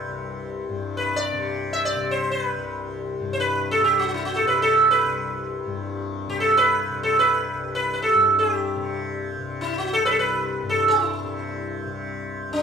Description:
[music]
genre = indian classical, Hindustani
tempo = free time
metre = none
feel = none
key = C raga yaman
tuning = A4 = 440 Hz
[part]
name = sitar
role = melody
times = 0.0-12.6 s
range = D4 to E5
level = -20 LUFS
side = right 2 dB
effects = none
[part]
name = tanpura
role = drone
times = 0.0-12.6 s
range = C2 to C3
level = -29 LUFS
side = left 3 dB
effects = none
[sound]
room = wet large studio reverb, RT60 1.1 s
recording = band playing live in one room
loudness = -20 LUFS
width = side -6 dB against mid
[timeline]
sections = 0.0-12.6 A section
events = none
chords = none

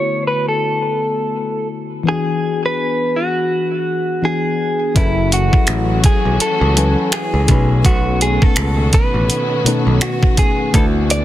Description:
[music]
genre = contemporary R&B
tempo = 83 BPM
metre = 4/4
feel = swing 58% on 16ths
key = F# minor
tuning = A4 = 439 Hz
[part]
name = direct-recorded clean electric guitar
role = melody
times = 0.0-11.2 s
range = E4 to D5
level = -19 LUFS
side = equal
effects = low-pass filter, digital delay
[part]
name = mellow FM electric piano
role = accompaniment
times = 0.0-11.2 s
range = B2 to G#5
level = -21 LUFS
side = left 3 dB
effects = chorus, low-pass filter
[part]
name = dark studio string section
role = sustained chords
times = 5.0-11.2 s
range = D#3 to F#4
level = -24 LUFS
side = equal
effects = sidechain pumping
[part]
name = modern bright picked electric bass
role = bass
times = 5.0-11.2 s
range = F#1 to D2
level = -17 LUFS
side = equal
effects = none
[part]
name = detuned 8-bit digital drum machine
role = drums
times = 5.0-11.2 s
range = finger snaps, hi-hat, kick drum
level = -15 LUFS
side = equal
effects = overdrive, soft clipping on snare
[part]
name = soft synth bell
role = texture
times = 5.0-7.4 s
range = B4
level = -39 LUFS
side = left 2 dB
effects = none
[sound]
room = digital ambience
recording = dense, heavily limited modern master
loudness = -14 LUFS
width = side -13 dB against mid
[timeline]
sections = 0.0-5.0 A section; 5.0-11.2 B section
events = none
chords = 0.0 D69; 2.1 E9; 5.0 F#m9; 7.5 B9; 10.7 D69

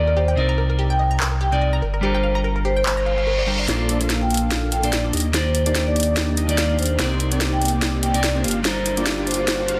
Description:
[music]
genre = future bass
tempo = 145 BPM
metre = 4/4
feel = swing 56% on 16ths, half-time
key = Bb major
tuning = A4 = 440 Hz
[part]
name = vibraphone with medium mallets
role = melody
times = 0.0-9.8 s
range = C5 to G5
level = -27 LUFS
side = equal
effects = delay
[part]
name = clean electric guitar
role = accompaniment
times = 0.0-9.8 s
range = Bb2 to D5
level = -28 LUFS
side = equal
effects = delay
[part]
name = saturated sub bass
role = bass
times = 0.0-9.8 s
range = G1 to Eb2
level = -26 LUFS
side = equal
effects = none
[part]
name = unison pluck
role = arpeggios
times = 0.1-3.6 s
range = G4 to Bb5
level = -32 LUFS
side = equal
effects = delay
[part]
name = trap drum kit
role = drums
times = 1.2-9.8 s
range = handclaps, hi-hat, snare drum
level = -27 LUFS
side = equal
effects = none
[part]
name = reverse cymbal and riser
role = sound effects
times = 3.0-9.8 s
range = none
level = -34 LUFS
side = equal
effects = none
[part]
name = big bright polysynth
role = riff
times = 3.7-9.8 s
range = Bb3 to F5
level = -28 LUFS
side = equal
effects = chorus, vintage 12-bit sampler grit
[sound]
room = light reverb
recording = dense, heavily limited modern master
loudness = -20 LUFS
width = mono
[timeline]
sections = 0.0-3.7 A section; 3.7-9.8 B section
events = reverse cymbal 3.0-3.7; build-up 3.7-9.8; drum fill 3.7-9.8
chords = 0.4 Cm7; 1.8 Gm7; 3.7 Bbmaj7; 5.1 Ebmaj7; 7.0 Cm7; 8.4 Gm7

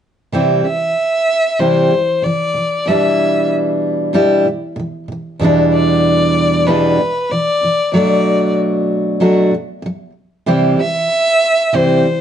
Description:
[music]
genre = acoustic pop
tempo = 95 BPM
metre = 4/4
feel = swing 60% on 16ths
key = unclear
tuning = A4 = 440 Hz
[part]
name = picked steel-string acoustic guitar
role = accompaniment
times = 0.3-12.2 s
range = E2 to F#4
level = -14 LUFS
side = right 1 dB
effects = none
[part]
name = rich violin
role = melody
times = 0.7-12.2 s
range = B4 to E5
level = -15 LUFS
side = left 1 dB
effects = none
[sound]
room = moderate studio reverb, RT60 0.9 s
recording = nothing above 10.3 kHz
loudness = -12 LUFS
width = side -9 dB against mid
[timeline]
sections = 0.3-12.2 A section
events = none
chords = 0.3 C; 2.6 G6/B; 5.4 Em7; 7.9 Bm7; 10.5 C

